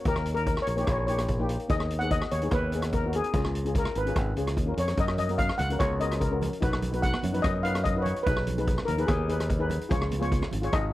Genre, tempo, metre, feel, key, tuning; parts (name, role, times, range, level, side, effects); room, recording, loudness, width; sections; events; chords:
calypso; 146 BPM; 4/4; straight; A4 = 440 Hz
steel pan; melody; 0.1-10.9 s; G#4 to F#5; -30 LUFS; left 2 dB
steel pan; accompaniment; 0.1-10.8 s; A#3 to C#5; -34 LUFS; left 2 dB
fingered electric bass; bass; 0.1-10.9 s; G#1 to F#2; -29 LUFS; equal
street-band drum kit; drums; 0.1-10.8 s; hi-hat, kick drum, rim click; -30 LUFS; equal
congas; percussion; 5.2-10.8 s; -38 LUFS; right 6 dB
little or no reverb; dry, close 1970s-style studio recording; -25 LUFS; side -16 dB against mid
0.0-10.9 A section
steel pan solo 0.0-10.9
0.1 D#; 1.7 G#m/D#; 3.3 C#7; 5.0 F#; 6.6 B; 8.3 G#m/B; 9.9 C#